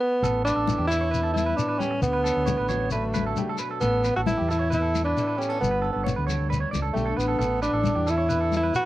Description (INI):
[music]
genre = highlife guitar band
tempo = 134 BPM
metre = 4/4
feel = straight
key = A mixolydian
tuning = A4 = 440 Hz
[part]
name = breathy tenor saxophone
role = melody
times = 0.0-8.9 s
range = A3 to F#4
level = -25 LUFS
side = equal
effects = cassette tape, analog delay
[part]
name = picked steel-string acoustic guitar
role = accompaniment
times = 0.2-8.9 s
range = G2 to A4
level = -34 LUFS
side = left 4 dB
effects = none
[part]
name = clean electric guitar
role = arpeggios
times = 0.2-8.8 s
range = E4 to D5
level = -31 LUFS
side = right 7 dB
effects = analog delay
[part]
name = fingered electric bass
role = bass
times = 0.2-8.7 s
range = G1 to E2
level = -28 LUFS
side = equal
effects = none
[part]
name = congas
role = percussion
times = 0.2-8.6 s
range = none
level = -33 LUFS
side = left 7 dB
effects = none
[part]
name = shekere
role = percussion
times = 0.2-8.9 s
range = none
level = -32 LUFS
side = left 3 dB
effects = none
[sound]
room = light reverb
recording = home recording on cassette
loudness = -22 LUFS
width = side -15 dB against mid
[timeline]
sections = 0.2-8.9 A section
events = drum fill 0.0; band accent 0.0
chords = 0.2 Asus2; 2.0 D; 3.8 Asus2; 5.6 Gadd9; 7.4 Asus2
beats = | 0.23 0.68 1.13 1.58 | 2.02 2.47 2.92 3.37 | 3.82 4.27 4.71 5.16 | 5.61 6.06 6.51 6.96 | 7.41 7.86 8.31 8.76